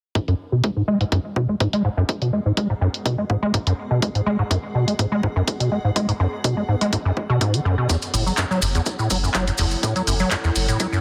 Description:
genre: acid house.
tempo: 124 BPM.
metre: 4/4.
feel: straight.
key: G# phrygian.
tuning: A4 = 445 Hz.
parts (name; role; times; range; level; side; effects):
acid bass, square; riff; 0.2-11.0 s; E2 to G#3; -23 LUFS; equal; tube saturation, analog chorus, delay.
electronic kick drum; drums; 0.2-10.9 s; none; -30 LUFS; equal; high-pass filter on kick.
punchy analog drum machine; drums; 0.2-10.9 s; handclaps, hi-hat; -28 LUFS; equal; low-pass filter on hats, low-pass filter on snare.
granular cloud pad; texture; 2.3-11.0 s; B3 to F#5; -37 LUFS; equal; built-in reverb, sidechain pumping.
maracas; percussion; 7.9-11.0 s; none; -32 LUFS; equal; none.
warm sub bass; bass; 8.1-10.7 s; F#1; -27 LUFS; equal; sidechain pumping.
room: light reverb, digital ambience.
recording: heavily compressed radio sound, multiband compression.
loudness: -21 LUFS.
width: mono.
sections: 0.2-11.0 A section.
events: fade-in on ambient pad 0.2-11.0; filter sweep on acid bass 0.2-11.0.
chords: 0.2 G#m7; 7.9 F#m7.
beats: | 0.15 0.64 1.12 1.60 | 2.09 2.57 3.06 3.54 | 4.02 4.51 4.99 5.47 | 5.96 6.44 6.93 7.41 | 7.89 8.38 8.86 9.35 | 9.83 10.31 10.80.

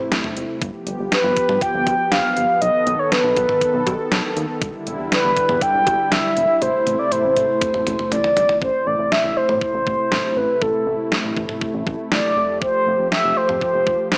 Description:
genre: synth-pop.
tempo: 120 BPM.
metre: 4/4.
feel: straight.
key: A minor.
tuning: A4 = 440 Hz.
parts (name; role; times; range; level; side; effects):
mellow horn-like synth lead; melody; 0.0-14.2 s; A4 to G5; -18 LUFS; equal; chorus.
warm analog pad; sustained chords; 0.0-14.2 s; C3 to A4; -25 LUFS; equal; chorus.
chorused synth bass; bass; 0.1-14.2 s; E1 to A2; -27 LUFS; equal; none.
detuned 8-bit digital drum machine; drums; 0.1-14.2 s; cowbell, hi-hat, kick drum, snare drum, toms; -22 LUFS; equal; overdrive, gated reverb.
room: moderate lush hall reverb, RT60 1.8 s.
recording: small speaker sound.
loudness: -16 LUFS.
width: side -36 dB against mid.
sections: 0.0-8.6 A section; 8.6-14.2 B section.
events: drum fill 6.6-8.6.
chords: 0.0 Am; 0.6 G7; 2.6 B7; 4.6 Em7; 6.6 Am; 12.4 Fadd9.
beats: 0.12 | 0.62 1.12 1.62 2.12 | 2.62 3.12 3.62 4.12 | 4.62 5.12 5.62 6.12 | 6.62 7.12 7.62 8.12 | 8.62 9.12 9.62 10.12 | 10.62 11.12 11.62 12.12 | 12.62 13.12 13.62 14.12.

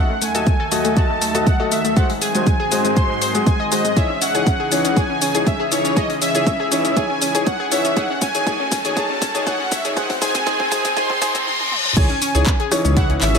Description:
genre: progressive house.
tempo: 120 BPM.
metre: 4/4.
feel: straight.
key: C# harmonic minor.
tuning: A4 = 442 Hz.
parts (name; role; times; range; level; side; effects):
soft supersaw; melody; 0.0-13.4 s; C#5 to B#5; -22 LUFS; right 1 dB; digital delay.
supersaw pad; sustained chords; 0.0-13.4 s; C#2 to A4; -28 LUFS; right 1 dB; sidechain pumping.
analog pluck; arpeggios; 0.0-13.4 s; G#3 to D#5; -24 LUFS; equal; chorus, sidechain pumping, digital delay.
clear concert grand piano; stabs; 0.0-13.4 s; D#3 to D#5; -24 LUFS; left 3 dB; sidechain pumping, low-pass filter, digital delay.
house drum kit; drums; 0.2-13.4 s; cabasa, crash cymbal, handclaps, hi-hat, rim click, toms; -24 LUFS; left 3 dB; overdrive.
electronic kick drum; drums; 0.5-13.1 s; none; -18 LUFS; equal; overdrive.
riser and reverse cymbal; sound effects; 6.2-12.0 s; none; -27 LUFS; left 2 dB; none.
dark detuned saw bass; bass; 12.0-13.4 s; G#1 to C#2; -19 LUFS; equal; tube saturation, sidechain pumping.
room: moderate lush hall reverb, RT60 1.6 s, digital ambience.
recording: high-pass filter.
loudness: -16 LUFS.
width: side -6 dB against mid.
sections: 0.0-12.0 A section; 12.0-13.4 B section.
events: build-up 0.0-12.0; filter sweep on grand piano 0.0-12.0; filter sweep 0.0-12.0; drum fill 4.0-11.5, 11.5-12.0; riser 6.2-12.0; reverse cymbal 11.0-12.0; drop 12.0-13.4.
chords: 0.0 D#dim; 2.0 G#7; 4.0 C#madd9; 8.0 D#dim; 10.0 G#7; 12.0 C#madd9.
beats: 0.47 0.97 1.47 | 1.97 2.47 2.97 3.47 | 3.97 4.47 4.97 5.47 | 5.97 6.47 6.97 7.47 | 7.97 8.47 8.97 9.47 | 9.97 10.47 10.97 11.47 | 11.97 12.47 12.97.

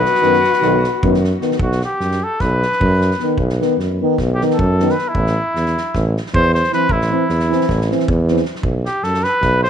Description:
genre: balkan folk, Balkan brass band.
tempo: 305 BPM (eighths).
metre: 9/8.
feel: straight.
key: B phrygian dominant.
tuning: A4 = 440 Hz.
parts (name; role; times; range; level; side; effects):
clear trumpet; melody; 0.0-9.7 s; E4 to C5; -18 LUFS; equal; none.
warm alto saxophone; second line; 0.0-1.2 s; F#4; -24 LUFS; left 9 dB; tape echo.
mellow tuba; bass; 0.0-9.6 s; A1 to F#2; -18 LUFS; right 1 dB; none.
loose indie drum kit; percussion; 0.1-9.7 s; kick drum, snare drum; -24 LUFS; right 1 dB; none.
dark euphonium; accompaniment; 0.2-8.4 s; B3 to C4; -21 LUFS; left 12 dB; none.
mellow euphonium; accompaniment; 0.2-8.4 s; D#3 to E3; -23 LUFS; right 12 dB; none.
room: light reverb, studio reverb.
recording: 1960s-style stereo with parts hard left and right.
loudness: -14 LUFS.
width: side -8 dB against mid.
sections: 0.0-1.6 A section; 1.6-9.7 B section.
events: trumpet solo 1.6-9.7.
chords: 0.0 B; 5.1 Am; 8.7 B5.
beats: 0.01 0.21 0.41 0.60 0.80 1.00 1.20 1.40 | 1.59 1.79 1.99 2.19 2.39 2.58 2.78 2.98 3.18 | 3.37 3.57 3.77 3.97 4.16 4.36 4.56 4.75 4.95 | 5.15 5.34 5.54 5.74 5.93 6.13 6.32 6.52 6.71 | 6.91 7.10 7.30 7.49 7.69 7.88 8.08 8.27 8.46 | 8.66 8.85 9.04 9.24 9.43 9.62.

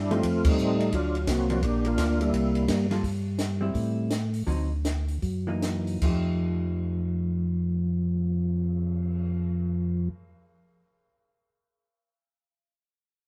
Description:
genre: soul jazz organ trio.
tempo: 145-172 BPM.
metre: 4/4.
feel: swing 63% on 8ths.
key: F mixolydian.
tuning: A4 = 440 Hz.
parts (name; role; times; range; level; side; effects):
overdriven tonewheel organ; melody; 0.0-2.9 s; F#3 to G4; -28 LUFS; equal; slow rotary speaker, chorus vibrato.
tonewheel organ; bass; 0.0-10.1 s; Bb1 to A2; -29 LUFS; equal; chorus vibrato, slow rotary speaker.
hollow-body jazz guitar; accompaniment; 0.1-10.8 s; D3 to A4; -36 LUFS; equal; none.
compact cocktail drum kit; drums; 0.1-9.2 s; crash cymbal, cymbal swell, hi-hat, kick drum, ride cymbal, snare drum; -32 LUFS; equal; none.
room: moderate stone room reverb, RT60 1.0 s.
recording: band playing live in one room.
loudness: -27 LUFS.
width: mono.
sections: 0.0-3.0 A section; 3.0-6.0 B section; 6.0-9.3 C section.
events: band accent 0.4; slowing down 3.0-6.0.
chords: 0.2 F9; 0.9 D7alt; 1.6 Gm7; 2.3 C7; 3.0 C/G; 3.7 Am7; 4.5 D7b9; 5.2 Gb6; 6.0 F9.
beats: | 0.24 0.59 0.94 1.29 | 1.64 1.99 2.34 2.69 | 3.04 3.39 3.74 4.10 | 4.47 4.84 5.22 5.62 | 6.02 6.43 6.85 7.26 | 7.67 8.09 8.50 8.91.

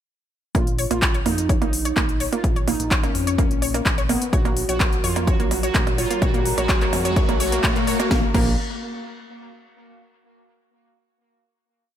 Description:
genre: melodic techno.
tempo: 127 BPM.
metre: 4/4.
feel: straight.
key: Bb minor.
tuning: A4 = 442 Hz.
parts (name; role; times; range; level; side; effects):
dark analog pad; sustained chords; 0.5-8.3 s; Db4 to Bb5; -32 LUFS; left 3 dB; chorus, sidechain pumping.
fat analog bass; bass; 0.5-8.6 s; Bb1 to Bb2; -28 LUFS; equal; sidechain pumping.
electronic kick drum; drums; 0.5-8.4 s; none; -22 LUFS; equal; none.
riser; sound effects; 3.3-8.1 s; none; -30 LUFS; left 2 dB; none.
resonant sweep polysynth; melody; 0.6-8.5 s; Bb3 to Gb4; -27 LUFS; right 2 dB; chorus, sidechain pumping, tape echo.
analog pluck; arpeggios; 0.6-8.6 s; Bb3 to Db5; -28 LUFS; equal; chorus, sidechain pumping, ping-pong delay.
techno drum kit; drums; 0.6-8.4 s; crash cymbal, handclaps, hi-hat, percussion blips, snare drum; -25 LUFS; right 2 dB; high-pass filter on hats, high-pass filter on perc, high-pass filter on snare, high-pass filter on cymbals, high-pass filter on room.
room: light reverb, digital ambience.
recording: none.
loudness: -18 LUFS.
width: side -10 dB against mid.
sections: 0.6-8.1 build; 8.1-10.0 final chord.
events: build-up 0.6-8.1; filter sweep on analog synth pad 0.6-8.1; riser 3.3-8.1.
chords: 0.6 Bbm7; 4.3 Gb/Bb; 8.1 Bbm7.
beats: | 0.55 1.02 1.50 1.97 | 2.44 2.91 3.38 3.86 | 4.33 4.80 5.28 5.75 | 6.22 6.69 7.17 7.64 | 8.11.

